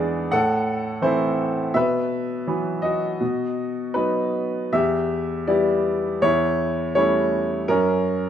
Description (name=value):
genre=classical, lyrical solo piano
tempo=78-85 BPM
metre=4/4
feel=rubato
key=unclear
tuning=A4 = 440 Hz
part: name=clear baby grand piano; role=solo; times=0.0-8.3 s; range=E2 to F#5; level=-20 LUFS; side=equal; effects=none
room=light reverb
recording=close, detailed microphones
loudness=-20 LUFS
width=side -9 dB against mid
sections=0.0-8.3 A section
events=none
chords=0.3 Am; 1.7 Bsus4; 3.2 B; 4.7 Em; 6.2 A7/E; 7.7 F#